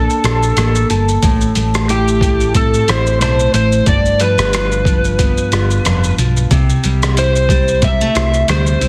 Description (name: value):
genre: indie pop, bedroom pop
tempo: 91 BPM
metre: 4/4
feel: swing 55% on 16ths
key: C major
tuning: A4 = 440 Hz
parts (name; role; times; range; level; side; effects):
- overdriven slide guitar; melody; 0.0-8.9 s; G4 to E5; -20 LUFS; equal; subtle chorus, delay
- nylon-string guitar; accompaniment; 0.0-8.9 s; G2 to A4; -20 LUFS; equal; subtle chorus, warbly pitch drift
- picked electric bass; bass; 0.0-8.9 s; F1 to C3; -19 LUFS; equal; none
- trip hop sampler-style drum kit; drums; 0.1-8.9 s; hi-hat, kick drum, rim click, shaker; -20 LUFS; equal; none
room: little or no reverb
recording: heavily compressed radio sound, multiband compression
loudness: -14 LUFS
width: mono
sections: 0.0-8.9 A section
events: none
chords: 0.0 Bbmaj7; 1.2 Am7; 3.9 G7; 6.5 C6